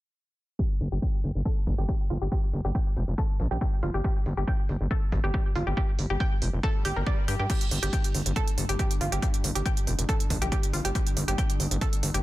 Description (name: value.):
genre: driving peak-time techno.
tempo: 139 BPM.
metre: 4/4.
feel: straight.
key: unclear.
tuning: A4 = 440 Hz.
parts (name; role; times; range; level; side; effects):
analog pluck; riff; 0.6-12.2 s; F4 to G5; -34 LUFS; equal; chorus, tube saturation, sidechain pumping, dub echo.
electronic kick drum; drums; 0.6-11.9 s; none; -27 LUFS; equal; none.
gritty driven synth bass; bass; 0.8-12.2 s; F1 to G2; -28 LUFS; equal; sidechain pumping.
techno drum kit; drums; 0.8-12.2 s; crash cymbal, hi-hat; -33 LUFS; right 4 dB; none.
swell; sound effects; 6.8-7.5 s; none; -43 LUFS; left 2 dB; none.
metallic inharmonic drone; drone; 7.8-12.2 s; G2 to D3; -37 LUFS; right 1 dB; chorus, built-in reverb, sidechain pumping.
room: little or no reverb.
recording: dense, heavily limited modern master, low-pass filter.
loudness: -24 LUFS.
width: side -17 dB against mid.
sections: 0.6-7.5 A section; 7.5-12.2 B section.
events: filter sweep on analog synth bass 0.6-7.5; filter sweep on synth arpeggio sound 0.6-7.5; filter sweep 0.6-7.5.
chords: 0.6 N.C.; 7.5 G5.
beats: | 0.59 1.02 1.45 1.89 | 2.32 2.75 3.18 3.61 | 4.04 4.48 4.91 5.34 | 5.77 6.20 6.63 7.07 | 7.50 7.93 8.36 8.79 | 9.22 9.66 10.09 10.52 | 10.95 11.38 11.81.